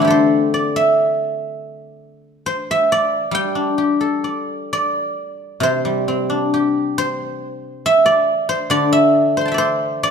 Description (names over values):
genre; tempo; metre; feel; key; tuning
chinese traditional, Chinese solo plucked strings; 67 BPM; 2/4; uneven beats, rubato; G zhi mode; A4 = 438 Hz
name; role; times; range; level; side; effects
guzheng; solo; 0.0-10.1 s; C3 to C6; -16 LUFS; equal; none
room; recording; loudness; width
moderate recital hall reverb, RT60 1.5 s; dark, warm production; -15 LUFS; side -6 dB against mid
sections
0.0-5.2 A section; 5.2-10.1 B section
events
none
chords
none